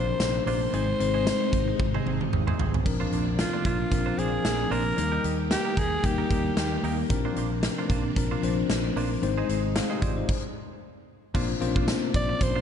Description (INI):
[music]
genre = 1980s-style pop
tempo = 113 BPM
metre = 4/4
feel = swing 55% on 16ths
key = Bb mixolydian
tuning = A4 = 440 Hz
[part]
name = raspy alto saxophone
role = melody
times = 0.0-7.0, 12.2-12.6 s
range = F4 to D5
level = -30 LUFS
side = left 1 dB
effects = digital delay
[part]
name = bell-like tine electric piano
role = accompaniment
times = 0.0-12.6 s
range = F3 to F5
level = -30 LUFS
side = left 6 dB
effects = none
[part]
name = string machine, full ensemble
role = sustained chords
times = 0.0-12.6 s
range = C3 to G4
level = -34 LUFS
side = right 1 dB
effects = phaser, ensemble chorus
[part]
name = direct-recorded clean electric guitar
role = riff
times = 0.0-12.6 s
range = Bb3 to C5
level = -38 LUFS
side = right 6 dB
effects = wide subtle chorus, digital delay
[part]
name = fretless electric bass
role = bass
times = 0.0-12.6 s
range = Ab1 to Eb2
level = -30 LUFS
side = right 1 dB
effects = none
[part]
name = big rock drum kit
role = drums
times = 0.2-12.5 s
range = crash cymbal, hi-hat, kick drum, snare drum, tambourine, toms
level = -28 LUFS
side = right 1 dB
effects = none
[sound]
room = light reverb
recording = dark, warm production, nothing above 10.6 kHz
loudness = -24 LUFS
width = side -8 dB against mid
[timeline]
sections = 0.0-2.9 A section; 2.9-11.4 B section; 11.4-12.6 A section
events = drum fill 1.8-2.9; stop 10.3-11.4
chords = 0.0 Bbadd9; 0.7 Ab; 2.9 Bbadd9; 5.0 Eb; 7.1 Bbadd9; 9.2 Ab; 11.4 Bbadd9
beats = 0.20 | 0.73 1.26 1.79 2.33 | 2.85 3.39 3.92 4.45 | 4.98 5.51 6.04 6.57 | 7.10 7.63 8.16 8.70 | 9.23 9.76 10.29 10.82 | 11.35 11.88 12.41